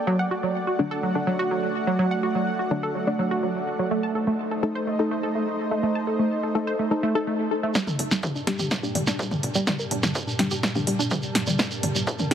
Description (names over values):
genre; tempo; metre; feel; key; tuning
melodic techno; 125 BPM; 4/4; straight; G harmonic minor; A4 = 440 Hz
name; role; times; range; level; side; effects
lush unison pad; sustained chords; 0.0-12.3 s; A3 to A5; -29 LUFS; right 2 dB; chorus, sidechain pumping
wide unison pluck; arpeggios; 0.1-12.3 s; F#3 to A5; -26 LUFS; right 1 dB; sidechain pumping, digital delay
filtered dub chord stab; stabs; 0.8-12.3 s; D3 to A4; -30 LUFS; left 3 dB; chorus, sidechain pumping, digital delay
shekere; percussion; 7.7-12.3 s; none; -31 LUFS; right 4 dB; none
swarming drone; drone; 8.4-12.3 s; G2 to Bb2; -33 LUFS; equal; built-in reverb, sidechain pumping
electronic kick drum; drums; 7.8-12.2 s; none; -30 LUFS; equal; high-pass filter on kick, studio ambience
techno drum kit; drums; 7.8-12.3 s; hi-hat, snare drum, toms; -25 LUFS; equal; low-pass filter on snare, studio ambience, sidechain pumping on toms, low-pass filter on toms, sidechain pumping on hats, low-pass filter on hats
tight sequencer bass; bass; 8.0-12.3 s; G1; -35 LUFS; equal; none
room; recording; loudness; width
moderate huge ambient reverb, RT60 7.6 s; heavily compressed radio sound, multiband compression; -22 LUFS; side -9 dB against mid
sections
0.0-7.8 A section; 7.8-12.3 B section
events
build-up 7.8-12.3; drum fill 7.8-12.3; filter sweep on synth pluck 7.8-12.3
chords
0.1 D; 3.9 Adim; 7.8 Gmadd9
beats
| 0.07 0.55 1.03 1.51 | 1.99 2.47 2.95 3.43 | 3.91 4.39 4.87 5.35 | 5.83 6.31 6.79 7.27 | 7.75 8.23 8.71 9.19 | 9.67 10.15 10.63 11.11 | 11.59 12.07